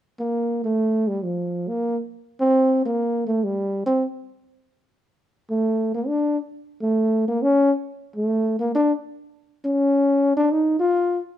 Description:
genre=jazz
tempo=136 BPM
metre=3/4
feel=swing 68% on 8ths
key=unclear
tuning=A4 = 442 Hz
part: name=dark trombone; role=solo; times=0.2-11.2 s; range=F3 to F4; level=-19 LUFS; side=equal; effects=none
room=moderate studio reverb, RT60 1.0 s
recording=minimal, uncompressed stereo recording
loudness=-20 LUFS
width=side -12 dB against mid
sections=0.0-5.2 A section; 5.2-11.4 B section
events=none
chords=none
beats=0.33 0.77 | 1.21 1.66 2.10 | 2.54 2.98 3.43 | 3.87 4.31 4.75 | 5.20 5.64 6.08 | 6.53 6.97 7.41 | 7.85 8.30 8.74 | 9.18 9.62 10.07 | 10.51 10.95

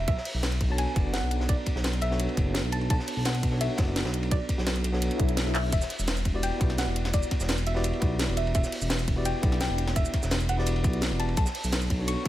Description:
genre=liquid drum and bass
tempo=170 BPM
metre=4/4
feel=straight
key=E minor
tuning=A4 = 440 Hz
part: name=smooth synth bass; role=bass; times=0.0-12.3 s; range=E1 to B1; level=-28 LUFS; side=equal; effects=none
part: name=soft round pluck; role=melody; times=0.1-12.3 s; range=D5 to C#6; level=-35 LUFS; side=left 1 dB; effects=chorus, digital delay
part: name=crunchy breakbeat drum kit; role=drums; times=0.1-12.3 s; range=hi-hat, ride cymbal, snare drum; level=-37 LUFS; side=equal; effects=high-pass filter on cymbals, high-pass filter on hats, high-pass filter on snare, high-pass filter on room
part: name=electronic kick drum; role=drums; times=0.1-12.3 s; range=none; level=-26 LUFS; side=equal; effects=none
part: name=garage drum kit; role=drums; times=0.1-12.3 s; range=handclaps, hi-hat, shaker, snare drum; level=-32 LUFS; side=equal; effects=none
part: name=tine electric piano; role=accompaniment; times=0.7-12.3 s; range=B3 to D5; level=-34 LUFS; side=right 1 dB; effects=medium tremolo, ping-pong delay
part: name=swell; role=sound effects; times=5.1-5.7 s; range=none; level=-37 LUFS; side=left 5 dB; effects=none
room=light reverb, studio ambience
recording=none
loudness=-24 LUFS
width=side -14 dB against mid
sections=0.0-12.3 A section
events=swell 5.1-5.7; drum fill 5.5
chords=0.1 Bm9; 5.7 Em9; 11.4 Bm9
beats=| 0.08 0.43 0.79 1.14 | 1.49 1.84 2.20 2.55 | 2.90 3.25 3.61 3.96 | 4.31 4.67 5.02 5.37 | 5.73 6.08 6.43 6.79 | 7.14 7.49 7.84 8.20 | 8.55 8.90 9.26 9.61 | 9.96 10.31 10.67 11.02 | 11.37 11.73 12.08

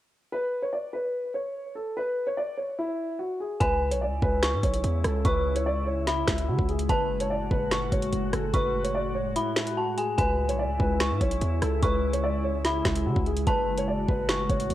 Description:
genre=hip hop, drill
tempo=146 BPM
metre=4/4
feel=half-time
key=C# phrygian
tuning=A4 = 440 Hz
part: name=dark concert grand piano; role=melody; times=0.3-14.7 s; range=E4 to D5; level=-29 LUFS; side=equal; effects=cassette tape, tape echo
part: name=dark detuned synth bell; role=second line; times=3.6-14.7 s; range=G#5 to C#6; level=-32 LUFS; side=equal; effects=chorus, cassette tape, tape echo
part: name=glassy FM pad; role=sustained chords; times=3.9-14.7 s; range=A2 to F#4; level=-32 LUFS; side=left 1 dB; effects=ensemble chorus, built-in reverb, cassette tape
part: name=hard-hitting 808-style bass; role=bass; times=3.6-14.7 s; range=F#1 to C#3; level=-29 LUFS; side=equal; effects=none
part: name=drill drum kit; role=drums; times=3.6-14.7 s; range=finger snaps, hi-hat, kick drum, rim click, snare drum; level=-28 LUFS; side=equal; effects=none
room=light reverb, digital ambience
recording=home recording on cassette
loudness=-24 LUFS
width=side -13 dB against mid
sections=0.3-3.6 A section; 3.6-14.7 B section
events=kick muted 9.4-10.2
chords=0.3 N.C.; 3.6 C#m; 6.9 F#madd9; 10.2 C#m; 13.5 F#madd9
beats=| 0.32 0.73 1.14 1.55 | 1.96 2.37 2.78 3.19 | 3.61 4.02 4.43 4.84 | 5.25 5.66 6.07 6.48 | 6.89 7.30 7.72 8.13 | 8.54 8.95 9.36 9.77 | 10.18 10.59 11.00 11.41 | 11.83 12.24 12.65 13.06 | 13.47 13.88 14.29 14.70

